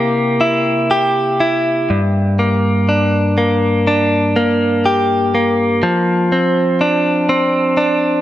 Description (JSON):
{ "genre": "pop", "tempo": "61 BPM", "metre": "4/4", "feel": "straight", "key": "G minor", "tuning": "A4 = 444 Hz", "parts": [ { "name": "direct-recorded clean electric guitar", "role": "solo", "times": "0.0-8.2 s", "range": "G2 to G4", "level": "-12 LUFS", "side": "equal", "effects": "none" } ], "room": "light reverb", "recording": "none", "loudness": "-12 LUFS", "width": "side -13 dB against mid", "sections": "0.0-1.9 A section; 1.9-8.2 B section", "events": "none", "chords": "0.0 C7; 1.9 Gm; 5.8 Bbadd9/F" }